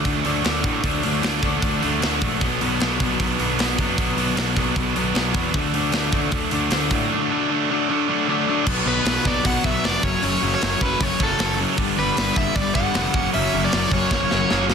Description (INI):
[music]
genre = punk rock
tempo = 154 BPM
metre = 4/4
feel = straight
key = B minor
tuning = A4 = 439 Hz
[part]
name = overdriven electric guitar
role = riff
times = 0.0-14.7 s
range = F#2 to D4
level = -25 LUFS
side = left 11 dB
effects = none
[part]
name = tight distorted guitar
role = riff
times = 0.0-14.7 s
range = F#2 to D4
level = -24 LUFS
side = right 14 dB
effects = distortion
[part]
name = fuzz picked electric bass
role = bass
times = 0.0-14.7 s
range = E#1 to A2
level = -27 LUFS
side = equal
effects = overdrive
[part]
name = tight metal drum kit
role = drums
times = 0.0-14.7 s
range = crash cymbal, hi-hat, kick drum, snare drum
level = -24 LUFS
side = equal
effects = soft clipping on kick
[part]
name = overdriven electric guitar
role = melody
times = 8.9-14.7 s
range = A4 to F#5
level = -24 LUFS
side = left 1 dB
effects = tape echo
[sound]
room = light reverb, studio reverb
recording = dense, heavily limited modern master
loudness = -18 LUFS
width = side -6 dB against mid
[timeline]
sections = 0.0-8.7 A section; 8.7-14.7 B section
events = drum fill 14.1-14.7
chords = 0.0 D; 2.4 Bm; 5.5 D; 8.7 Bm; 10.0 F#m; 11.8 G; 13.1 F#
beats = 0.06 0.45 | 0.84 1.24 1.63 2.02 | 2.41 2.80 3.19 3.59 | 3.98 4.37 4.76 5.15 | 5.54 5.93 6.32 6.71 | 7.11 7.50 7.89 8.28 | 8.67 9.06 9.45 9.84 | 10.23 10.62 11.01 11.39 | 11.78 12.17 12.56 12.95 | 13.33 13.72 14.11 14.49